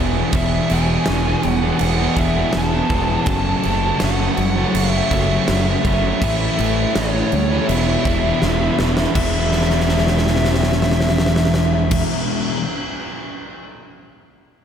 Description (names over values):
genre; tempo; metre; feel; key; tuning
rock, shoegaze and dream pop; 82 BPM; 4/4; straight; E mixolydian; A4 = 440 Hz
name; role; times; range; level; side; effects
crunchy overdriven guitar; riff; 0.0-12.6 s; E2 to G#4; -22 LUFS; right 7 dB; reverse reverb
thick fuzz guitar; riff; 0.0-12.6 s; E2 to A3; -22 LUFS; left 6 dB; distortion, analog chorus
modern bright fingered electric bass; bass; 0.0-12.0 s; E1 to D2; -22 LUFS; equal; none
huge arena drum kit; drums; 0.3-13.6 s; crash cymbal, kick drum, snare drum; -22 LUFS; right 1 dB; none
fuzz lead guitar; melody; 0.4-12.0 s; C#5 to A5; -24 LUFS; left 2 dB; distortion, diffuse ambient delay
room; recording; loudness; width
moderate plate reverb, RT60 2.8 s; dreamy mix soaked in reverb; -15 LUFS; side -8 dB against mid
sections
0.0-9.2 A section; 9.2-12.1 B section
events
drum fill 8.4-9.2, 9.5-11.9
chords
0.0 E7sus4; 3.3 F#m7; 6.2 A; 7.7 E7